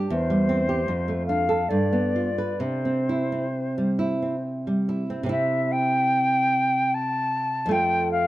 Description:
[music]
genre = romantic duo for flute and classical guitar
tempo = 63-80 BPM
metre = 3/4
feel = rubato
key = C major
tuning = A4 = 440 Hz
[part]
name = nylon-string guitar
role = accompaniment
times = 0.0-8.3 s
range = E2 to B4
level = -24 LUFS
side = right 1 dB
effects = none
[part]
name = silver concert flute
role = melody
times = 0.1-8.3 s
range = C5 to A5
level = -24 LUFS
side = left 1 dB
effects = none
[sound]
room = moderate plate reverb, RT60 3.3 s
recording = dark, warm production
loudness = -21 LUFS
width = side -16 dB against mid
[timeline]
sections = 0.0-5.3 A section; 5.3-8.3 B section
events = none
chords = 0.1 C/E; 0.9 Dm7/F; 1.7 G7; 2.6 C; 7.7 Dm/F (rootless)

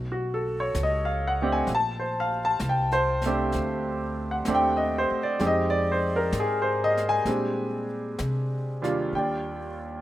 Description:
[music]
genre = jazz ballad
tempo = 64 BPM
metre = 4/4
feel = swing 69% on 8ths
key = Bb major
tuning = A4 = 440 Hz
[part]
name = upright bass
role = bass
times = 0.0-10.0 s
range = Bb1 to C3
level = -31 LUFS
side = equal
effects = none
[part]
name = warm concert grand piano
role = accompaniment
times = 0.1-10.0 s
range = Eb2 to A5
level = -24 LUFS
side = equal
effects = none
[part]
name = jazz brush drum kit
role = drums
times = 0.7-10.0 s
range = brushed snare drum, hi-hat, snare drum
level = -40 LUFS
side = left 1 dB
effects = none
[sound]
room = light reverb, studio reverb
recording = rough home demo mix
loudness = -23 LUFS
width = side -14 dB against mid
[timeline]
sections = 0.0-9.1 A section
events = none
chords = 0.0 Bsus2; 1.7 Bbmaj13; 5.4 Fm7; 7.3 Bb13; 9.1 Ebmaj9

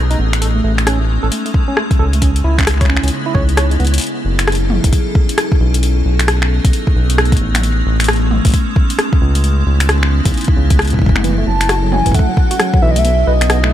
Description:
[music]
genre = IDM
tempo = 133 BPM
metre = 4/4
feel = swing 62% on 16ths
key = unclear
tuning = A4 = 439 Hz
[part]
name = icy glass pad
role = sustained chords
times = 0.0-13.7 s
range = C#3 to A4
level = -21 LUFS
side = equal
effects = chorus, built-in reverb
[part]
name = round analog bass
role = bass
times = 0.0-13.7 s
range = F#1 to C#2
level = -14 LUFS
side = equal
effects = none
[part]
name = tine electric piano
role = arpeggios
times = 0.1-3.8, 11.2-13.7 s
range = E3 to C#5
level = -22 LUFS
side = right 4 dB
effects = medium stereo tremolo, dub echo
[part]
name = electro analog drum machine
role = drums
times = 0.1-13.7 s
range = finger snaps, hi-hat, rim click, toms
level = -18 LUFS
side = left 1 dB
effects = none
[part]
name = electronic kick drum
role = drums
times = 1.5-12.8 s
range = none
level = -13 LUFS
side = equal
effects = none
[part]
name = warm velvety synth lead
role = melody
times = 11.5-13.7 s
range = D#5 to A5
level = -18 LUFS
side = left 1 dB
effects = chorus, ping-pong delay
[sound]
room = little or no reverb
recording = none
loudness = -11 LUFS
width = side -12 dB against mid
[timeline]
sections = 0.0-4.0 A section; 4.0-13.7 B section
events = drum fill 3.8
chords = 0.4 Amaj7; 2.2 C#m7; 4.0 F#m7; 5.8 B7; 7.6 Amaj7; 9.4 C#m7; 11.2 F#m7; 13.0 B7

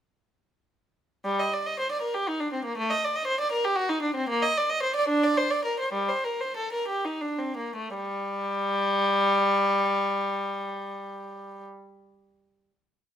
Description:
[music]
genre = classical, baroque-style suite movement for unaccompanied violin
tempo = 54-81 BPM (dotted quarters)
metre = 6/8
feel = rubato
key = G minor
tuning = A4 = 443 Hz
[part]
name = warm violin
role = solo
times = 1.2-11.6 s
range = G3 to Eb5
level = -25 LUFS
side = equal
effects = none
[sound]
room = moderate stone room reverb, RT60 1.0 s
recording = heard from further back in the room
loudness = -24 LUFS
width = side -9 dB against mid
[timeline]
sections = 1.2-8.0 A section; 8.0-12.4 final chord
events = slowing down 3.5-8.0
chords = none

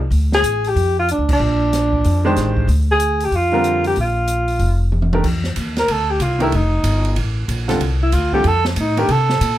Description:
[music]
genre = modal jazz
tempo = 187 BPM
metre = 4/4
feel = swing 63% on 8ths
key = Bb mixolydian, F mixolydian from 5.2 s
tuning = A4 = 440 Hz
[part]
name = upright bass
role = bass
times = 0.0-9.6 s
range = F1 to C3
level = -18 LUFS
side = equal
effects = none
[part]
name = open jazz drum kit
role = drums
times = 0.1-9.5 s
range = crash cymbal, hi-hat, kick drum, ride cymbal, snare drum, toms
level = -25 LUFS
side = right 1 dB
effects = none
[part]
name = breathy alto saxophone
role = melody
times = 0.3-9.6 s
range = C4 to Bb4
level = -18 LUFS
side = equal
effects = none
[part]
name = clear baby grand piano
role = accompaniment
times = 2.2-9.1 s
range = D3 to C5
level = -20 LUFS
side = equal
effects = none
[sound]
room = light reverb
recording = none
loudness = -15 LUFS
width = side -13 dB against mid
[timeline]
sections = 0.0-5.2 A section; 5.2-9.6 B section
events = band accent 1.2; drum fill 4.9-5.2; alto saxophone solo 5.2-9.6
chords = 0.0 Bbadd9; 5.2 F13

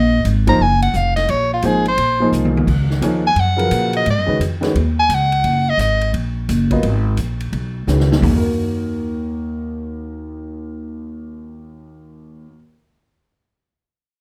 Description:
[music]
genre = modal jazz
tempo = 173 BPM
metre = 4/4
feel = swing 65% on 8ths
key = Eb minor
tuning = A4 = 442 Hz
[part]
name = edgy soprano saxophone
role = melody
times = 0.0-6.1 s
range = F4 to Bb5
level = -19 LUFS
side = equal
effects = none
[part]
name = upright bass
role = bass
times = 0.0-12.5 s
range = F1 to Bb2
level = -21 LUFS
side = equal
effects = none
[part]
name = swinging big-band drum kit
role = drums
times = 0.2-8.3 s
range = crash cymbal, hi-hat, kick drum, ride cymbal, snare drum, toms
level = -28 LUFS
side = equal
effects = none
[part]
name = clear grand piano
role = accompaniment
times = 0.5-12.6 s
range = Eb2 to Eb5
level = -24 LUFS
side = equal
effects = none
[sound]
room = moderate club reverb, RT60 0.6 s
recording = none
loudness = -17 LUFS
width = mono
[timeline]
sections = 0.0-8.2 A section; 8.2-11.0 B section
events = soprano saxophone solo 0.0-8.2; drum fill 2.3-2.7, 7.9-8.2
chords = 0.0 Ebsus4; 2.7 Db13sus4; 8.2 Ebm

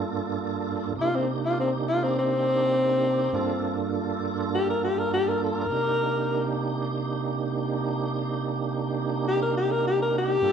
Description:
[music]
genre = blues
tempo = 102 BPM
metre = 4/4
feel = straight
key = unclear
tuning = A4 = 440 Hz
[part]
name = tonewheel organ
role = accompaniment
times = 0.0-10.5 s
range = G2 to A4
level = -27 LUFS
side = right 4 dB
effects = slow rotary speaker, overdrive, chorus vibrato
[part]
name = breathy tenor saxophone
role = melody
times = 1.0-10.5 s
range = C4 to Bb4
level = -24 LUFS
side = left 2 dB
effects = none
[sound]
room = moderate large studio reverb, RT60 1.2 s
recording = band playing live in one room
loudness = -24 LUFS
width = side -7 dB against mid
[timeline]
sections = 0.0-10.5 A section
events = none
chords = 0.0 Gm7; 1.0 Cm7; 3.3 Gm7; 5.7 Cm7

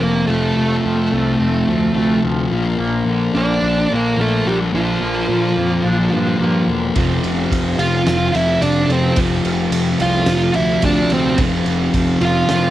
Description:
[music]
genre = quiet-loud alternative rock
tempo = 108 BPM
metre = 4/4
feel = straight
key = unclear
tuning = A4 = 439 Hz
[part]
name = fuzz lead guitar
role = melody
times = 0.0-12.7 s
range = F3 to F5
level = -19 LUFS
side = right 2 dB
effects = distortion, cassette tape
[part]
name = twangy electric guitar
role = arpeggios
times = 0.0-7.0 s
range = F2 to D4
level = -26 LUFS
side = right 2 dB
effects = harmonic tremolo, cassette tape
[part]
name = thick fuzz guitar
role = riff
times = 0.0-12.7 s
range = F2 to Bb3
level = -19 LUFS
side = left 4 dB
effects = distortion, cassette tape
[part]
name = fuzz picked electric bass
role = bass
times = 0.0-12.7 s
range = E1 to Bb2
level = -22 LUFS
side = equal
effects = overdrive
[part]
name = distorted electric guitar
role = riff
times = 7.0-12.7 s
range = F2 to F3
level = -23 LUFS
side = right 7 dB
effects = distortion, cassette tape
[part]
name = loose indie drum kit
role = drums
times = 7.0-12.6 s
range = kick drum, ride cymbal, snare drum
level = -22 LUFS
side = right 1 dB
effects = cassette tape
[sound]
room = light reverb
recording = home recording on cassette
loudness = -14 LUFS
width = side -13 dB against mid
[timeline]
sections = 0.0-12.7 A section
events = half time 0.0-12.7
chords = 0.0 F; 2.5 Bb; 7.0 F5

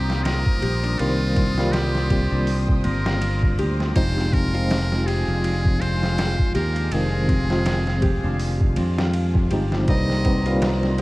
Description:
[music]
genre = trip hop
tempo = 81 BPM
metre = 4/4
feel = swing 57% on 16ths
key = C minor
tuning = A4 = 442 Hz
[part]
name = trumpet with metal mute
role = melody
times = 0.0-10.6 s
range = F4 to Eb5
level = -29 LUFS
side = equal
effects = tape echo
[part]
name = tine electric piano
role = accompaniment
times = 0.0-11.0 s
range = Eb3 to F4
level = -26 LUFS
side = equal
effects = medium tremolo, tape echo
[part]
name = warm symphonic violin section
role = sustained chords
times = 0.0-11.0 s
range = Ab3 to Eb6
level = -35 LUFS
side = equal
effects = none
[part]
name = Celtic harp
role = arpeggios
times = 0.0-11.0 s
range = C4 to G4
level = -30 LUFS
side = left 3 dB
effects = tape echo
[part]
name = fingered electric bass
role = bass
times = 0.0-11.0 s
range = F1 to F2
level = -23 LUFS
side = equal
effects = none
[part]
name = trip hop sampler-style drum kit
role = drums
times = 0.1-11.0 s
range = hi-hat, kick drum, ride cymbal, snare drum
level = -24 LUFS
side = equal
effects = none
[part]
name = tabla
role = percussion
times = 9.9-11.0 s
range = none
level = -34 LUFS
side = right 5 dB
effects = none
[sound]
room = small room reverb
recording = echo-heavy mix, vinyl crackle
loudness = -19 LUFS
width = side -20 dB against mid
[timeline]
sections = 0.0-11.0 A section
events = none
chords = 0.0 Cm7; 4.0 Fm7; 9.9 Cm7

